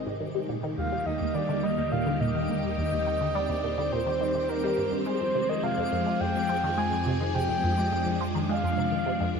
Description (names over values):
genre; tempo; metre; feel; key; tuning
ambient, sequencer-driven space music; 105 BPM; 4/4; straight; unclear; A4 = 441 Hz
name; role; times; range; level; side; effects
breathy flute-like synth lead; melody; 0.0-9.3 s; Bb4 to Ab5; -29 LUFS; equal; chorus, cassette tape, analog delay
phased string machine; sustained chords; 0.0-9.4 s; C3 to Ab4; -30 LUFS; equal; ensemble chorus, phaser
analog drone; bass; 1.5-9.4 s; Ab1 to F2; -36 LUFS; left 1 dB; chorus
twinkling granular texture; texture; 0.0-9.4 s; D6; -47 LUFS; right 1 dB; built-in reverb
resonant blip pluck; riff; 0.1-9.4 s; Eb2 to Ab3; -30 LUFS; equal; phaser, wide subtle chorus, analog delay
room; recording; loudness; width
wet lush hall reverb, RT60 2.6 s; none; -25 LUFS; side -5 dB against mid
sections
0.0-9.4 A section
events
fade-in on synth drone 0.0-9.4; fade-in on synth texture 0.0-9.4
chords
0.5 Eb; 5.1 Fm